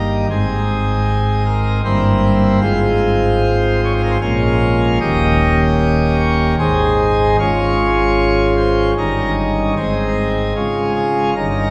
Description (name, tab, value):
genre	classical, chorale-style piece for pipe organ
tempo	76 BPM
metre	3/4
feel	rubato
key	Ab major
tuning	A4 = 441 Hz
part	pipe organ, plenum	solo	0.0-11.7 s	Eb1 to F5	-16 LUFS	equal	none
room	wet church reverb, RT60 2.7 s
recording	heard from further back in the room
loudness	-16 LUFS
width	mono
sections	0.0-11.7 A section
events	none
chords	0.3 Ab; 1.9 C7/G; 2.6 Fm/Ab; 4.2 Bbm7; 5.0 Eb7; 6.6 Ab; 7.4 Db/Ab; 9.0 Eb7/G; 9.8 Ab; 10.6 Db